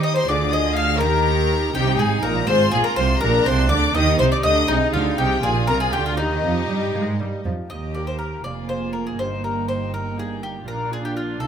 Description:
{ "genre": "classical, baroque-style concerto movement with solo episodes", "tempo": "81 BPM (dotted quarters)", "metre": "6/8", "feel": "straight", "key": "Eb major", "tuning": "A4 = 440 Hz", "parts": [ { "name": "bowl-back mandolin", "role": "melody", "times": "0.0-11.5 s", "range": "Eb4 to F5", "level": "-25 LUFS", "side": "left 2 dB", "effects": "none" }, { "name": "rich chamber violin section", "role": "melody", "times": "0.0-11.5 s", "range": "Eb5 to F6", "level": "-28 LUFS", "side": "left 5 dB", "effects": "none" }, { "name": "rich chamber violin section", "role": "second line", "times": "0.0-11.5 s", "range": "Eb4 to F5", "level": "-26 LUFS", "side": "left 4 dB", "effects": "none" }, { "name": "clear chamber viola section", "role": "accompaniment", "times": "0.0-11.5 s", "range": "Bb3 to Ab4", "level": "-28 LUFS", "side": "right 1 dB", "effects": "none" }, { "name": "lute", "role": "accompaniment", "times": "0.0-11.5 s", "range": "Eb2 to Bb4", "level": "-30 LUFS", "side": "equal", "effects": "none" }, { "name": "rich chamber cello section", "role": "bass", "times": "0.0-11.5 s", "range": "Eb2 to Eb4", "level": "-27 LUFS", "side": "right 3 dB", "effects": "none" }, { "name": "rich chamber double bass section", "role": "bass", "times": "0.0-11.5 s", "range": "F1 to Eb3", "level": "-24 LUFS", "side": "right 3 dB", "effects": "none" } ], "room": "moderate recital hall reverb, RT60 1.5 s", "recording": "close, detailed microphones", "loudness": "-18 LUFS", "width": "side -8 dB against mid", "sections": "0.0-7.7 A section; 7.7-11.5 B section", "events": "none", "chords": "0.3 Bb7/D; 1.0 Eb; 1.7 Cm; 2.5 Fm/Ab; 3.2 Bb7; 3.9 Eb; 4.7 Ab/C; 5.4 Bb; 6.2 Eb; 8.4 Bb5/F; 9.2 Eb/G; 10.7 Bb" }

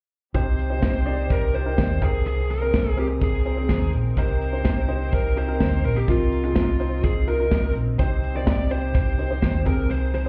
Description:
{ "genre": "piano-driven pop", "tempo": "126 BPM", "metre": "4/4", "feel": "straight", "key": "C minor", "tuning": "A4 = 442 Hz", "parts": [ { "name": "clear upright piano", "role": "accompaniment", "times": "0.3-10.3 s", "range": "C3 to D5", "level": "-31 LUFS", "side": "equal", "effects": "none" }, { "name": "warm studio string section", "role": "sustained chords", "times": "0.3-10.3 s", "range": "C3 to Bb4", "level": "-38 LUFS", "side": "equal", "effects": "none" }, { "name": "vintage muted fingered electric bass", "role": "bass", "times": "0.3-10.3 s", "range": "Bb1 to Eb2", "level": "-26 LUFS", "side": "equal", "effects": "none" }, { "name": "modern studio drum kit", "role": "drums", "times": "0.3-10.3 s", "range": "hi-hat, kick drum, snare drum", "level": "-25 LUFS", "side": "equal", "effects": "none" }, { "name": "fuzz lead guitar", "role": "melody", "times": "0.4-10.3 s", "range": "F4 to D5", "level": "-31 LUFS", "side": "equal", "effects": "distortion" } ], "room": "light reverb, small room reverb", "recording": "heard muffled through a wall, club reverb, EQ", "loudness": "-22 LUFS", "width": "mono", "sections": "0.3-10.3 A section", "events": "none", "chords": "0.3 Cm; 2.0 Abadd9/C; 4.2 Eb/C; 6.1 Bbsus4/C; 8.0 Cm; 9.7 Abadd9/C" }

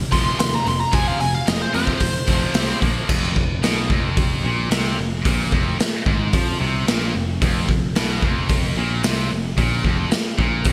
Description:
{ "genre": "hard rock", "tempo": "111 BPM", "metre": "4/4", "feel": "straight", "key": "F minor", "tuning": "A4 = 440 Hz", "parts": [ { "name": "distorted electric guitar", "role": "riff", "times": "0.0-10.7 s", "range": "F2 to C4", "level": "-30 LUFS", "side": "equal", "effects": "overdrive" }, { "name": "scooped high-gain guitar", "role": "riff", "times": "0.0-10.7 s", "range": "F2 to C4", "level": "-28 LUFS", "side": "equal", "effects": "distortion" }, { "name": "bluesy overdriven lead guitar", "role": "melody", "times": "0.1-2.8 s", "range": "C5 to C6", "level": "-26 LUFS", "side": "equal", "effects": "distortion, delay" }, { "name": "picked electric bass", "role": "bass", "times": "0.1-10.7 s", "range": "F1 to F2", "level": "-27 LUFS", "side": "equal", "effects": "none" }, { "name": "raw garage drum kit", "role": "drums", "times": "0.1-10.7 s", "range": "crash cymbal, hi-hat, kick drum, snare drum", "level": "-23 LUFS", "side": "equal", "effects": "gated reverb" } ], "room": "light reverb, small room ambience", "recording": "bright 1980s-style digital production", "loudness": "-20 LUFS", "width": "mono", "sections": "0.0-3.1 A section; 3.1-10.7 B section", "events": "lead electric guitar solo 0.0-3.1", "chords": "0.0 F5; 2.6 C5; 2.8 Bb5; 3.1 F5" }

